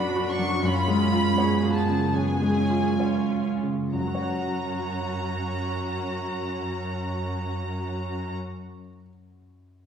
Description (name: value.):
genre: classical, romantic movement for piano and orchestra.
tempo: 62-88 BPM.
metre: 4/4.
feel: rubato.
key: unclear.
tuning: A4 = 438 Hz.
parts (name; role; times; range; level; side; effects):
clear grand piano; melody; 0.0-9.9 s; F#2 to F#5; -26 LUFS; right 1 dB; none.
warm chamber violin section; melody; 0.0-8.3 s; G#5 to C#6; -31 LUFS; left 1 dB; none.
rich chamber viola section; accompaniment; 0.0-8.3 s; B3 to G#4; -33 LUFS; equal; none.
warm chamber cello section; bass; 0.0-8.3 s; F#2; -31 LUFS; right 2 dB; none.
room: wet recital hall reverb, RT60 1.6 s.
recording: recorded in a church or concert hall.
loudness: -23 LUFS.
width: side -8 dB against mid.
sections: 0.0-3.9 A section; 3.9-7.6 B section.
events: slowing down 0.0-3.9.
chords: 0.0 Bm/F#; 0.6 C#7/F#; 3.9 F#.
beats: | 0.64 1.37 2.13 2.99 | 3.93 4.84 5.75 6.66.